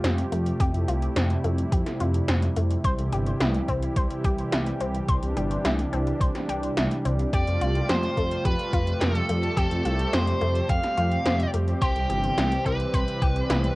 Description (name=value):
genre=synthwave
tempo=107 BPM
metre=4/4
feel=straight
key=C major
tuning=A4 = 440 Hz
part: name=warm analog pad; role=sustained chords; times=0.0-13.8 s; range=C3 to G4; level=-30 LUFS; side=right 1 dB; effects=wide subtle chorus, sidechain pumping, cassette tape
part: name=analog pluck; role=arpeggios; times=0.0-13.6 s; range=A3 to C5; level=-32 LUFS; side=left 2 dB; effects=chorus, cassette tape, analog delay, plate reverb
part: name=dark detuned saw bass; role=bass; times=0.0-13.7 s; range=G1 to F2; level=-26 LUFS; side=equal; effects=none
part: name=80s electronic pad drums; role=drums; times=0.0-13.8 s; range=hi-hat, snare drum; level=-29 LUFS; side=equal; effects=overdrive, cassette tape
part: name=electronic kick drum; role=drums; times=0.6-13.3 s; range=none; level=-25 LUFS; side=equal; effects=cassette tape
part: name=biting lead guitar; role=melody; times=7.3-13.8 s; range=G4 to F5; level=-28 LUFS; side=equal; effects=overdrive, plate reverb
room=moderate booth ambience, RT60 0.3 s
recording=home recording on cassette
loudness=-22 LUFS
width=side -20 dB against mid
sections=0.0-13.8 A section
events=none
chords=0.0 Fadd9; 2.8 C; 7.3 Fadd9; 11.8 C